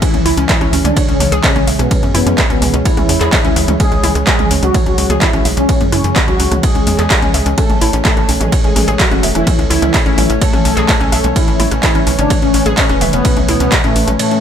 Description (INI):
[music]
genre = melodic techno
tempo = 127 BPM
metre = 4/4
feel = straight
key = C# minor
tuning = A4 = 440 Hz
[part]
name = expressive synth lead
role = melody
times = 0.0-14.4 s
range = A3 to A4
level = -18 LUFS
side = equal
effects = ensemble chorus, cassette tape, sidechain pumping, tape echo
[part]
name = airy dreamy lead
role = second line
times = 0.0-14.4 s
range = A2 to A3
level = -24 LUFS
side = equal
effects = chorus, sidechain pumping, tape echo
[part]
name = dark analog pad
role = sustained chords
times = 0.0-14.4 s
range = E3 to C#5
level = -21 LUFS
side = equal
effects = chorus, sidechain pumping
[part]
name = warbly dusty pluck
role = arpeggios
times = 0.0-14.4 s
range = C#4 to E5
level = -20 LUFS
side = left 1 dB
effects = chorus, sidechain pumping, tape echo
[part]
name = deep house drum kit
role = drums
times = 0.0-14.4 s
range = handclaps, hi-hat, ride cymbal, rim click, toms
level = -17 LUFS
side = right 1 dB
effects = overdrive
[part]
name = electronic kick drum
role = drums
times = 0.0-13.8 s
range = none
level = -15 LUFS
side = equal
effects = none
[part]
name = tight sequencer bass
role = bass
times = 0.1-14.2 s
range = E1 to F#2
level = -18 LUFS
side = equal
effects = tube saturation, sidechain pumping
[sound]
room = light reverb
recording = none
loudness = -10 LUFS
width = side -8 dB against mid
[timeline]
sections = 0.0-14.4 A section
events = kick drops out 14.2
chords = 0.0 C#m; 7.6 A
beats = | 0.02 0.49 0.96 1.44 | 1.91 2.38 2.85 3.33 | 3.80 4.27 4.74 5.22 | 5.69 6.16 6.63 7.11 | 7.58 8.05 8.52 9.00 | 9.47 9.94 10.41 10.89 | 11.36 11.83 12.30 12.78 | 13.25 13.72 14.19